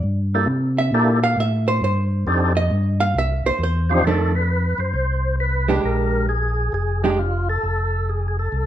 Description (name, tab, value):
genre	soul jazz organ trio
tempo	134 BPM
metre	4/4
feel	swing 65% on 8ths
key	unclear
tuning	A4 = 440 Hz
part	mellow tonewheel organ	bass	0.0-8.7 s	F1 to C3	-20 LUFS	equal	chorus vibrato, slow rotary speaker
part	percussive tonewheel organ	melody	0.3-8.7 s	F3 to C5	-23 LUFS	equal	slow rotary speaker, overdrive, chorus vibrato
part	archtop guitar, miked and amplified	accompaniment	0.8-7.2 s	Eb3 to F5	-22 LUFS	right 3 dB	none
room	moderate large studio reverb, RT60 1.0 s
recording	dark, warm production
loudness	-18 LUFS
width	side -11 dB against mid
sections	0.0-4.1 A section; 4.1-8.7 B section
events	hollow-body jazz guitar solo 0.0-4.1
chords	0.5 C13; 2.3 F13; 3.2 Cadd9; 4.1 F13; 5.8 Bb6; 7.6 F